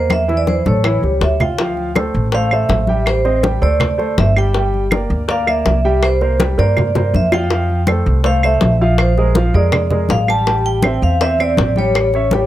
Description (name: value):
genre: Afro-Cuban jazz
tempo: 162 BPM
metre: 4/4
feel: straight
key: D minor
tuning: A4 = 439 Hz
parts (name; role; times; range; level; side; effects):
- vibraphone with medium hard mallets; melody; 0.0-12.5 s; C5 to A5; -19 LUFS; right 1 dB; plate reverb, tape echo
- warm grand piano; accompaniment; 0.0-12.5 s; E3 to G5; -20 LUFS; equal; plate reverb
- upright bass; bass; 0.0-12.4 s; G1 to G2; -17 LUFS; equal; none
- bongos; percussion; 0.1-12.5 s; none; -23 LUFS; left 6 dB; none
- claves; percussion; 0.1-12.1 s; none; -21 LUFS; right 3 dB; none
- congas; percussion; 0.1-12.5 s; none; -21 LUFS; left 1 dB; none
room: moderate small room reverb, RT60 0.5 s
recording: none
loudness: -13 LUFS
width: side -13 dB against mid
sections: 0.0-1.6 A section; 1.6-12.5 B section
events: drum fill 0.1-1.6, 6.4-7.5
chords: 0.1 C13b9; 0.8 A7; 1.6 Dm9; 3.1 Am7b5; 3.8 D5; 4.5 Gmadd11; 6.0 Csus2; 7.5 Fmaj9; 9.0 Bb13; 10.5 Am7; 11.9 A7